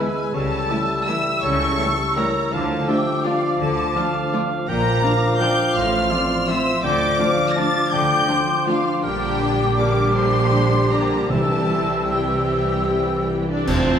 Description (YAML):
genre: classical, orchestral ballroom waltz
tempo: 143-180 BPM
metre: 3/4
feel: rubato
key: D minor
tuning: A4 = 439 Hz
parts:
  - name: warm symphonic violin section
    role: melody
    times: 0.0-14.0 s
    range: C5 to Bb6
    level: -26 LUFS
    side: left 2 dB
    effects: none
  - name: large flute ensemble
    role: second line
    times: 0.0-14.0 s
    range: C5 to E6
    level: -26 LUFS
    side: left 1 dB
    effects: none
  - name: mellow clarinet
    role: second line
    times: 0.0-14.0 s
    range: A3 to A5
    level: -28 LUFS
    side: left 1 dB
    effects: none
  - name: warm cor anglais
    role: second line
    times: 0.0-14.0 s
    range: A4 to A5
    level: -28 LUFS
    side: right 3 dB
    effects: none
  - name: warm studio violin section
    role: second line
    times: 0.0-13.5 s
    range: C4 to G4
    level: -30 LUFS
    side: left 2 dB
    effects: none
  - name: dark bassoon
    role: accompaniment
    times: 0.0-14.0 s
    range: F3 to G#3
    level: -26 LUFS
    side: equal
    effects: none
  - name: rich symphonic viola section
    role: accompaniment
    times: 0.0-14.0 s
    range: D3 to D4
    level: -28 LUFS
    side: right 2 dB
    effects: none
  - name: dark French horn section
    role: sustained chords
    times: 0.0-14.0 s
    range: F3 to F4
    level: -30 LUFS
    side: left 1 dB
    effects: none
  - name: concert harp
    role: arpeggios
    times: 0.0-14.0 s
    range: F2 to A4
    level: -30 LUFS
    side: left 5 dB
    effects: none
  - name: clear symphonic cello section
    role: bass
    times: 0.3-14.0 s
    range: F2 to D3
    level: -28 LUFS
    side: right 2 dB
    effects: none
  - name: rich symphonic double bass section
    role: bass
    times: 0.3-14.0 s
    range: F1 to D2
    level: -27 LUFS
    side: right 2 dB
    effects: none
  - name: cymbal swell, clash cymbals and concert bass drum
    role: percussion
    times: 11.3-14.0 s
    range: none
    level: -28 LUFS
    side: equal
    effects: none
  - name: timpani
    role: percussion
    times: 11.3-11.9 s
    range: C3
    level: -29 LUFS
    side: equal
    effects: none
room: wet recital hall reverb, RT60 1.8 s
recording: recorded in a church or concert hall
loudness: -17 LUFS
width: side -8 dB against mid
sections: 0.0-13.7 A section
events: band accent 13.7-14.0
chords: 0.3 A7/C#; 2.5 Dm; 4.7 Bb; 5.8 F/A; 6.8 Dm; 9.0 Gm/Bb; 11.3 C